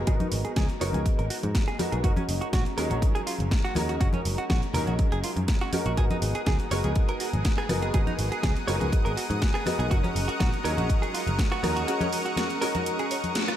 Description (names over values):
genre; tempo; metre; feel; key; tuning
nu-disco, nu disco; 122 BPM; 4/4; straight; unclear; A4 = 440 Hz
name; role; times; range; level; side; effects
warm grand piano; accompaniment; 0.0-13.6 s; F#3 to A#4; -31 LUFS; equal; ensemble chorus, diffuse ambient delay
picked electric bass; bass; 0.0-11.8 s; F#1 to G#2; -29 LUFS; equal; none
direct-recorded clean electric guitar; riff; 0.1-13.5 s; C#4 to C#5; -34 LUFS; right 3 dB; lush chorus, low-pass filter, diffuse ambient delay
electronic kick drum; drums; 0.1-11.5 s; none; -25 LUFS; equal; none
house drum kit; drums; 0.1-13.6 s; hi-hat, rim click, snare drum; -34 LUFS; equal; none
congas; percussion; 0.2-13.3 s; none; -34 LUFS; left 2 dB; none
lush unison pad; sustained chords; 6.0-13.6 s; G#4 to D#6; -33 LUFS; equal; chorus, sidechain pumping
room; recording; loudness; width
light reverb; none; -24 LUFS; side -11 dB against mid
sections
0.0-13.6 A section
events
band accent 13.4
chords
0.0 G#m7; 2.0 F#6; 6.0 G#m7; 9.9 F#6